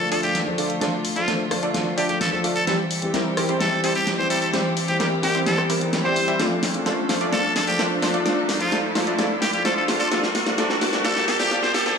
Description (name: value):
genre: EDM, festival progressive house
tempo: 129 BPM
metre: 4/4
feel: straight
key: D minor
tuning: A4 = 442 Hz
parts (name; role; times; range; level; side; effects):
- trumpet with straight mute; melody; 0.0-11.9 s; F4 to C5; -25 LUFS; equal; dub echo
- warm grand piano; accompaniment; 0.0-12.0 s; E3 to A4; -28 LUFS; left 2 dB; dub echo
- dark chamber string section; sustained chords; 0.0-12.0 s; D3 to Bb4; -29 LUFS; left 1 dB; none
- riser; sound effects; 2.9-12.0 s; none; -30 LUFS; equal; none
- supersaw stab; riff; 0.1-11.7 s; G3 to E5; -26 LUFS; right 1 dB; low-pass filter, dub echo
- big-room dance drum kit; drums; 0.1-12.0 s; hi-hat, rim click, snare drum; -26 LUFS; equal; none
room: moderate lush hall reverb, RT60 2.4 s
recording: high-pass filter, studio reverb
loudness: -19 LUFS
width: side -6 dB against mid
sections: 0.0-12.0 A section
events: build-up 0.0-12.0; drum fill 0.0-12.0; filter sweep on supersaw synth 0.0-12.0; riser 2.9-12.0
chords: 0.0 Dm; 2.7 C; 6.4 Dm; 10.1 Gm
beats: 0.35 | 0.81 1.28 1.75 2.21 | 2.67 3.14 3.61 4.07 | 4.54 5.00 5.47 5.93 | 6.40 6.86 7.33 7.79 | 8.26 8.72 9.19 9.65 | 10.12 10.58 11.05 11.51 | 11.98